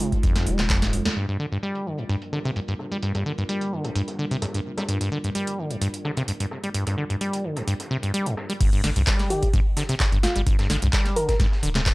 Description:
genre	acid house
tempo	129 BPM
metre	4/4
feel	straight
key	G phrygian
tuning	A4 = 443 Hz
part	dark analog pad	sustained chords	0.0-8.6 s	G3 to Bb4	-34 LUFS	right 1 dB	chorus, sidechain pumping
part	acid bass, saw	riff	0.0-11.9 s	Eb2 to Ab3	-26 LUFS	equal	tube saturation, tape echo
part	booming analog drum machine	drums	0.0-11.9 s	crash cymbal, handclaps, hi-hat, snare drum	-29 LUFS	equal	overdrive, low-pass filter on hats, low-pass filter on snare, low-pass filter on cymbals, low-pass filter on room
part	breakbeat sampler-style drum kit	drums	0.0-11.9 s	hi-hat, snare drum	-38 LUFS	equal	none
part	electronic kick drum	drums	0.1-0.8, 8.6-11.9 s	none	-22 LUFS	equal	overdrive
part	warm sub bass	bass	0.5-1.0, 8.6-11.9 s	D1 to C2	-25 LUFS	equal	sidechain pumping
part	soft struck synth lead	melody	9.3-11.4 s	F4 to Bb4	-27 LUFS	equal	chorus, analog delay
room	moderate small room reverb, RT60 0.6 s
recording	dry, gritty hardware recording, transformer saturation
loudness	-22 LUFS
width	side -22 dB against mid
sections	0.0-1.2 A section; 1.2-8.6 B section; 8.6-11.9 C section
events	drum fill 0.7-1.2; band accent 1.0; filter sweep on drum 1.2-8.6; drop 8.6-11.9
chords	0.0 Fm7; 1.2 Gm7; 8.6 G5

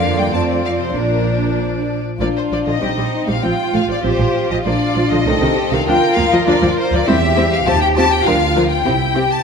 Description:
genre	quick classical-period movement for string orchestra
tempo	99 BPM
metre	2/4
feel	straight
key	Bb major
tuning	A4 = 440 Hz
part	rich studio violin section	melody	0.0-9.4 s	Bb4 to A5	-19 LUFS	left 5 dB	none
part	warm chamber violin section	second line	0.0-9.2 s	C4 to D5	-20 LUFS	left 2 dB	none
part	rich studio viola section	accompaniment	0.0-9.2 s	C3 to D4	-20 LUFS	right 1 dB	none
part	rich studio cello section	bass	0.0-9.4 s	Bb2 to G4	-23 LUFS	right 4 dB	none
part	rich studio double bass section	bass	0.0-9.4 s	A1 to F2	-21 LUFS	right 3 dB	none
room	wet scoring stage reverb, RT60 2.0 s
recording	none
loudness	-14 LUFS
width	side -6 dB against mid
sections	0.0-2.2 A section; 2.2-9.4 B section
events	none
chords	0.3 F; 1.0 Bb; 2.8 Cm7/Bb; 3.4 F/A; 4.6 Bb; 5.3 Adim/C; 5.9 Bb/D; 7.1 C/E; 7.7 F5/Eb; 8.3 Bb/D (rootless); 8.9 C

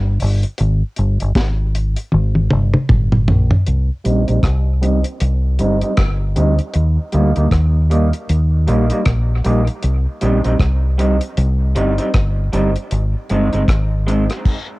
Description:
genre	dub reggae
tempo	78 BPM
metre	4/4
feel	swing 60% on 16ths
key	C minor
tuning	A4 = 440 Hz
part	deep dub fingered electric bass	bass	0.0-14.3 s	G1 to Eb2	-15 LUFS	equal	none
part	deep reggae drum kit	drums	0.2-14.7 s	crash cymbal, hi-hat, kick drum, rim click, snare drum, toms	-17 LUFS	equal	cassette tape
part	electric guitar through a small old amp	accompaniment	4.0-14.2 s	G3 to Eb4	-20 LUFS	right 1 dB	harmonic tremolo, low-pass filter, cassette tape, dub echo
room	light reverb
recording	home recording on cassette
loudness	-14 LUFS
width	side -20 dB against mid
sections	0.0-3.7 A section; 3.7-14.8 B section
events	break 0.0-3.7; drum fill 2.1-3.7; filter sweep on clean electric guitar 3.7-14.8; stop 14.5-14.8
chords	0.0 N.C.; 3.7 Cm; 6.7 Eb; 9.8 Cm; 12.9 Ab

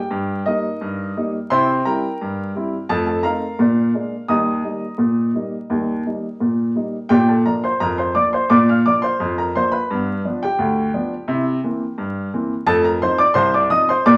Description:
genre	ragtime piano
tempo	86 BPM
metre	2/4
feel	straight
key	Eb major, Bb major from 7.1 s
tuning	A4 = 440 Hz
part	warm upright piano	solo	0.0-14.2 s	C2 to F6	-19 LUFS	equal	none
room	wet club reverb, RT60 0.8 s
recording	vinyl crackle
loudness	-19 LUFS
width	mono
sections	0.0-7.1 A section; 7.1-14.2 B section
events	none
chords	0.0 Eb/G; 1.5 C7; 2.9 F7; 3.6 Bb7; 4.3 Eb; 7.1 Bb; 9.9 G7; 11.3 C7; 12.7 F7

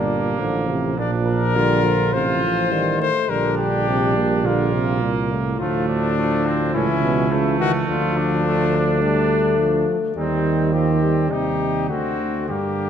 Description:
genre	classical, brass quintet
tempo	104 BPM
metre	4/4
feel	straight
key	unclear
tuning	A4 = 444 Hz
part	warm trumpet	melody	0.0-12.9 s	D4 to D5	-24 LUFS	left 7 dB	none
part	bright trumpet	second line	0.0-12.9 s	A3 to F4	-27 LUFS	right 5 dB	none
part	mellow French horn	accompaniment	0.0-12.9 s	D3 to A3	-25 LUFS	left 2 dB	none
part	warm trombone	accompaniment	0.0-12.9 s	A2 to G3	-24 LUFS	right 2 dB	none
part	mellow tuba	bass	0.0-12.9 s	G1 to G2	-22 LUFS	right 3 dB	none
room	wet scoring stage reverb, RT60 2.0 s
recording	none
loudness	-17 LUFS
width	side -8 dB against mid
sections	0.0-12.9 A section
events	none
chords	0.0 Gm; 1.0 Bb; 2.1 F/A; 3.3 Bb; 5.6 Dm; 6.7 A/C#; 7.9 Dm; 10.2 Cm/Eb; 11.3 Eb6; 11.9 D7

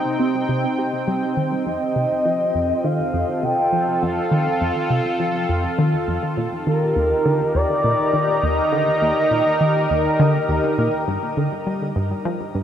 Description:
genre	ambient, sequencer-driven space music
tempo	102 BPM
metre	4/4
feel	straight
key	unclear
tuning	A4 = 440 Hz
part	sweeping resonant pad	sustained chords	0.0-12.6 s	C3 to Bb5	-22 LUFS	equal	chorus, shimmer reverb
part	tight sequenced synth	riff	0.2-12.6 s	Eb2 to G4	-22 LUFS	equal	chorus, tape echo
part	expressive portamento lead	melody	1.7-10.5 s	Bb4 to G5	-22 LUFS	equal	lush chorus, shimmer reverb, tape echo
room	wet huge ambient reverb, RT60 7.9 s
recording	none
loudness	-18 LUFS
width	side -9 dB against mid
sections	0.0-11.1 A section; 11.1-12.6 B section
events	filter sweep on synth arpeggio sound 0.0-11.1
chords	0.0 Cm; 1.7 F; 6.4 Eb; 11.1 Gm

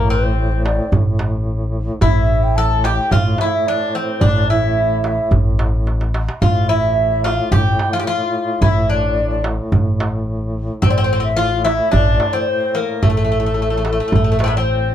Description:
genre	Turkish makam ensemble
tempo	109 BPM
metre	4/4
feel	straight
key	A makam kurdi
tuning	A4 = 440 Hz
part	Greek bouzouki	melody	0.0-14.9 s	A3 to A4	-19 LUFS	equal	none
part	breathy mellow ney	second line	0.0-14.9 s	A4 to A5	-22 LUFS	left 4 dB	none
part	upright bass	bass	0.0-14.9 s	A1	-19 LUFS	equal	none
part	warm duduk	drone	0.0-14.9 s	A2	-26 LUFS	equal	none
part	darbuka	percussion	0.1-14.5 s	none	-19 LUFS	right 2 dB	none
room	light reverb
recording	dark, warm production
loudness	-14 LUFS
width	side -10 dB against mid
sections	0.0-14.9 A section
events	drum fill 5.9-6.4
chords	none

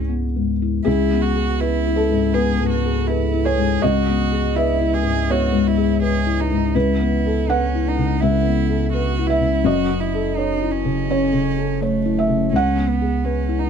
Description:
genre	neoclassical piano and strings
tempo	82 BPM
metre	4/4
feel	rubato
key	C# minor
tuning	A4 = 435 Hz
part	warm cello	second line	0.0-13.7 s	A3 to G#4	-24 LUFS	right 8 dB	none
part	felt-muted upright piano	accompaniment	0.0-13.7 s	C#2 to F#5	-19 LUFS	left 3 dB	none
part	pure sine sub bass	bass	0.0-13.7 s	F#1 to C#2	-24 LUFS	right 1 dB	none
room	little or no reverb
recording	dark, warm production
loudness	-17 LUFS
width	side -7 dB against mid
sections	0.9-13.7 A section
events	none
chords	0.0 C#m7; 6.7 Aadd9/C#; 9.7 F#m7; 12.5 C#m7

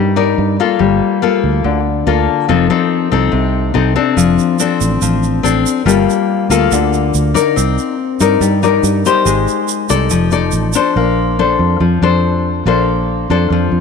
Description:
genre	bossa nova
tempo	142 BPM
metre	4/4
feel	straight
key	G minor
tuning	A4 = 440 Hz
part	nylon-string guitar	accompaniment	0.0-13.8 s	C3 to D5	-13 LUFS	left 8 dB	none
part	fingered electric bass	bass	0.0-13.8 s	F1 to G2	-16 LUFS	right 3 dB	none
part	tube shaker	percussion	4.2-11.0 s	none	-23 LUFS	right 19 dB	none
room	moderate plate reverb, RT60 3.4 s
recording	1960s-style stereo with parts hard left and right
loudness	-11 LUFS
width	side -5 dB against mid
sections	0.0-11.0 A section; 11.0-13.8 B section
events	none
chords	0.0 Cm9 (rootless); 0.8 Gm9; 2.5 F7; 4.2 Dm7/F; 5.9 Gm9; 7.6 Cm9; 9.3 Abmaj7; 10.1 F6; 11.0 Bbmaj9

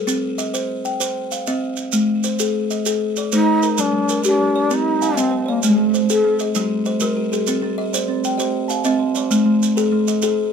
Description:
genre	southern african traditional, mbira-style interlocking cycle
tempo	130 BPM (dotted quarters)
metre	12/8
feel	straight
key	unclear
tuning	A4 = 435 Hz
part	buzzing kalimba	arpeggios	0.0-10.5 s	G3 to G5	-19 LUFS	left 2 dB	none
part	maracas	percussion	0.1-10.4 s	none	-26 LUFS	right 8 dB	none
part	mellow hollow long shakuhachi	melody	3.3-6.4 s	A3-28c to A4-34c	-18 LUFS	right 1 dB	none
part	kalimba	arpeggios	3.9-10.5 s	G3 to A5-29c	-23 LUFS	right 4 dB	none
room	light reverb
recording	close, detailed microphones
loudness	-16 LUFS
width	side -6 dB against mid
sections	0.0-3.8 A section; 3.8-10.5 A section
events	none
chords	0.1 C; 1.9 Am; 3.8 Gm; 4.7 C; 5.6 Am; 6.6 Gm; 7.5 C; 9.3 Am

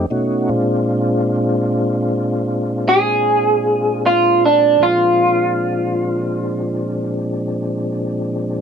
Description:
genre	blues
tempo	free time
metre	none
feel	none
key	unclear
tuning	A4 = 440 Hz
part	mellow tonewheel organ	sustained chords	0.0-8.6 s	Bb2 to Gb4	-19 LUFS	equal	slow rotary speaker, chorus vibrato
part	electric guitar through a small old amp	melody	2.9-7.1 s	D4 to Ab4	-14 LUFS	right 1 dB	wide subtle chorus
room	moderate club reverb, RT60 0.6 s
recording	none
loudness	-15 LUFS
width	side -7 dB against mid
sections	0.0-8.6 A section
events	clean electric guitar solo 0.0-8.6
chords	0.1 Bb9

